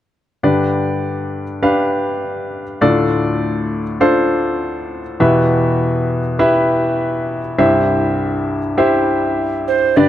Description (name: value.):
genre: piano-driven pop.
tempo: 101 BPM.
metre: 4/4.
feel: straight.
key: G mixolydian.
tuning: A4 = 439 Hz.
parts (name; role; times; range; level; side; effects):
clear baby grand piano; accompaniment; 0.4-10.1 s; C2 to F5; -14 LUFS; left 1 dB; none.
breathy mellow alto recorder; melody; 9.7-10.1 s; C5 to E5; -14 LUFS; right 8 dB; none.
room: light reverb, small room ambience.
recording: dry, close 1970s-style studio recording.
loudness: -14 LUFS.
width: side -12 dB against mid.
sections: 0.4-10.0 A section.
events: none.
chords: 0.4 G; 2.8 Dm; 5.2 Em; 7.6 C.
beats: | 0.44 1.03 1.63 2.23 | 2.82 3.42 4.01 4.61 | 5.20 5.80 6.40 6.99 | 7.59 8.18 8.78 9.37 | 9.97.